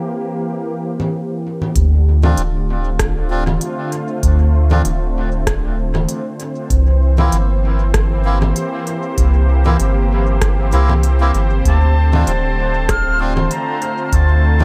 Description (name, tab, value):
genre	ambient dub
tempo	97 BPM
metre	4/4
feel	swing 55% on 16ths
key	D minor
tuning	A4 = 445 Hz
part	warm analog pad	sustained chords	0.0-14.6 s	D3 to C5	-25 LUFS	equal	chorus
part	organic electronic drum kit	drums	1.0-14.6 s	congas, hi-hat, rim click	-25 LUFS	equal	dub echo
part	soft dub sub bass	bass	1.8-14.6 s	D1 to D2	-16 LUFS	equal	none
part	electronic kick drum	drums	1.8-14.3 s	none	-23 LUFS	equal	none
part	melodica	stabs	2.2-14.6 s	Bb3 to F4	-27 LUFS	equal	dub echo
part	reedy silver concert flute	melody	11.7-14.6 s	A5 to F6	-23 LUFS	equal	dub echo
room	light reverb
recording	none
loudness	-16 LUFS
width	mono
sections	0.0-1.8 A section; 1.8-14.6 B section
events	none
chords	0.0 C7; 1.8 Dm7; 6.7 C7; 11.7 Dm7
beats	0.52 1.14 | 1.76 2.37 2.99 3.61 | 4.23 4.85 5.47 6.09 | 6.70 7.32 7.94 8.56 | 9.18 9.80 10.42 11.03 | 11.65 12.27 12.89 13.51 | 14.13